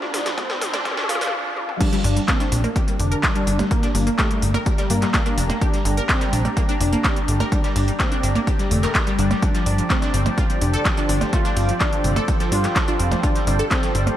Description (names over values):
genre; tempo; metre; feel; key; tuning
melodic techno; 126 BPM; 4/4; straight; G minor; A4 = 439 Hz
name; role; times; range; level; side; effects
wide unison lead; melody; 0.0-14.0 s; G3 to F4; -27 LUFS; left 1 dB; vintage 12-bit sampler grit, sidechain pumping, diffuse ambient delay
deep dark ambient pad; sustained chords; 0.0-14.2 s; G3 to Bb5; -30 LUFS; right 1 dB; chorus, built-in reverb, sidechain pumping
wide unison pluck; arpeggios; 0.0-14.2 s; C3 to Bb4; -26 LUFS; equal; lush chorus, sidechain pumping, tape echo
breakbeat sampler-style drum kit; drums; 0.0-14.1 s; hi-hat, snare drum; -34 LUFS; equal; sidechain pumping on hats, high-pass filter on hats, high-pass filter on snare, high-pass filter on room
techno drum kit; drums; 0.0-14.2 s; crash cymbal, handclaps, hi-hat, percussion blips, toms; -26 LUFS; right 1 dB; none
riser; sound effects; 0.0-1.3 s; none; -31 LUFS; equal; none
electronic kick drum; drums; 0.4-13.8 s; none; -22 LUFS; equal; none
plucky analog bass; bass; 2.0-14.1 s; F1 to G2; -21 LUFS; equal; sidechain pumping
room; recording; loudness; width
moderate huge ambient reverb, RT60 4.1 s; dreamy mix soaked in reverb, high-pass filter; -18 LUFS; side -12 dB against mid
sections
0.0-1.8 A section; 1.8-14.2 B section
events
build-up 0.0-1.8; drum fill 0.0-1.3, 1.6; riser 0.0-1.3; filter sweep 0.0-1.8; stop 1.3-1.8; drop 1.8-14.2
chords
0.0 F6; 1.8 Gm; 9.4 F6